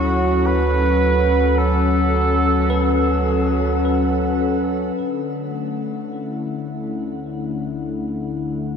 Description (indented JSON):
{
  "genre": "ambient",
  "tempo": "53 BPM",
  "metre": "3/4",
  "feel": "straight",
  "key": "D major",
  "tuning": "A4 = 437 Hz",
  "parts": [
    { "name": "clear flugelhorn", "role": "melody", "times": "0.0-3.8 s", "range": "F#4 to B4", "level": "-22 LUFS", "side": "right 3 dB", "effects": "shimmer reverb, ping-pong delay" },
    { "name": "warm analog pad", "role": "sustained chords", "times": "0.0-8.8 s", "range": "D3 to F#5", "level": "-20 LUFS", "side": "left 2 dB", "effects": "chorus, shimmer reverb" },
    { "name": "bell-like tine electric piano", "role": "arpeggios", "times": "0.0-5.5 s", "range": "B4", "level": "-30 LUFS", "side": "right 4 dB", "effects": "medium stereo tremolo, shimmer reverb, ping-pong delay" },
    { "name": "deep rumbling drone", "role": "bass", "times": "0.0-8.8 s", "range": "D2", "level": "-22 LUFS", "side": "right 1 dB", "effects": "built-in reverb" },
    { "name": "rich studio violin section", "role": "texture", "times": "0.0-5.0 s", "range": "B5", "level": "-47 LUFS", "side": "right 2 dB", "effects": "shimmer reverb" }
  ],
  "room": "wet lush hall reverb, RT60 2.9 s",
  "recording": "none",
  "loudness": "-18 LUFS",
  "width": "side -6 dB against mid",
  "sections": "0.0-5.0 A section; 5.0-8.8 B section",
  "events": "filter sweep on analog synth pad 5.0-8.8",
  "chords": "0.0 D6"
}